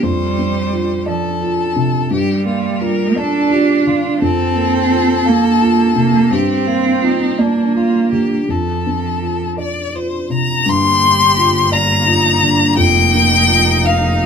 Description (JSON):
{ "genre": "neoclassical piano and strings", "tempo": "57 BPM (dotted quarters)", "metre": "6/8", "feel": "rubato", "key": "G minor", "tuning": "A4 = 440 Hz", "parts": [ { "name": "clear violin", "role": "melody", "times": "0.0-14.3 s", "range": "D4 to C6", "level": "-16 LUFS", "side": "left 4 dB", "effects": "none" }, { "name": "rich cello", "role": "second line", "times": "0.0-14.3 s", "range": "F3 to G4", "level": "-17 LUFS", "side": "right 4 dB", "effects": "none" }, { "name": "felt-muted upright piano", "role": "accompaniment", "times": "0.0-14.3 s", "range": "F2 to F5", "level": "-18 LUFS", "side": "equal", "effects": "none" }, { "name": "rich viola", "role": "accompaniment", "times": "10.7-14.3 s", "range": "Bb3", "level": "-23 LUFS", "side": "right 3 dB", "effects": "none" }, { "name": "rich double bass", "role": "bass", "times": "10.7-14.3 s", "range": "F1 to G1", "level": "-18 LUFS", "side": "equal", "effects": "none" } ], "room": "light reverb", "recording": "band playing live in one room, lossy compression artefacts", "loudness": "-12 LUFS", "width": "side -7 dB against mid", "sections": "0.0-10.7 A section; 10.7-14.3 A section", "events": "none", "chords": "0.0 Dm7/F; 2.1 Gm7; 4.2 Fsus4; 6.3 Gm7; 8.5 Dm7/F; 10.7 Gm7; 12.8 Fsus4" }